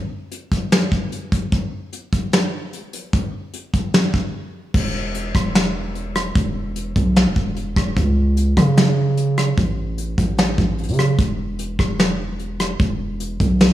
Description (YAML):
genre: hip hop, atmospheric cloud-rap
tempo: 149 BPM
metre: 4/4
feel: half-time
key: unclear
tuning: A4 = 440 Hz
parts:
  - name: soft brush drum kit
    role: drums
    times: 0.3-13.7 s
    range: crash cymbal, hi-hat, kick drum, rim click, snare drum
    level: -19 LUFS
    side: equal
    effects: none
  - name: long sustained 808-style bass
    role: bass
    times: 4.7-13.7 s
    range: D#1 to C#3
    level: -20 LUFS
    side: right 1 dB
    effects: none
room: light reverb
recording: small room ambience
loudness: -17 LUFS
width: side -13 dB against mid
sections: 0.0-4.7 A section; 4.7-13.7 B section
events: break 4.3-4.7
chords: none